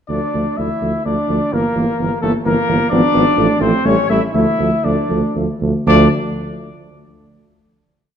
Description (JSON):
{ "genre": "classical, brass quintet", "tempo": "116-130 BPM", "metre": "3/4", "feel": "rubato", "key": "D minor", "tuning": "A4 = 440 Hz", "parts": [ { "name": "warm trumpet", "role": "melody", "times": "0.1-6.1 s", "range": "A4 to E5", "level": "-20 LUFS", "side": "left 8 dB", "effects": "none" }, { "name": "warm trumpet", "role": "second line", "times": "0.1-6.1 s", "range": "A3 to E4", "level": "-21 LUFS", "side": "right 7 dB", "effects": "none" }, { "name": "mellow trombone", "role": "accompaniment", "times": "0.1-6.1 s", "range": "E3 to G3", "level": "-23 LUFS", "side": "right 3 dB", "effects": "none" }, { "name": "warm French horn", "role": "accompaniment", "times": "0.1-6.1 s", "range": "A3 to B3", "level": "-21 LUFS", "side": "left 2 dB", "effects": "none" }, { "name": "mellow tuba", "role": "bass", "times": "0.1-6.1 s", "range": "G1 to D2", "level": "-19 LUFS", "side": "right 2 dB", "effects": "none" } ], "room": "wet recital hall reverb, RT60 1.9 s", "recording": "dark, warm production", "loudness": "-13 LUFS", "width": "side -8 dB against mid", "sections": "0.1-5.9 A section; 5.9-7.4 final chord", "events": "none", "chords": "0.1 Dm; 1.5 Edim/G; 2.9 G#dim7; 3.4 Dm/A; 3.9 A7; 4.4 Dm" }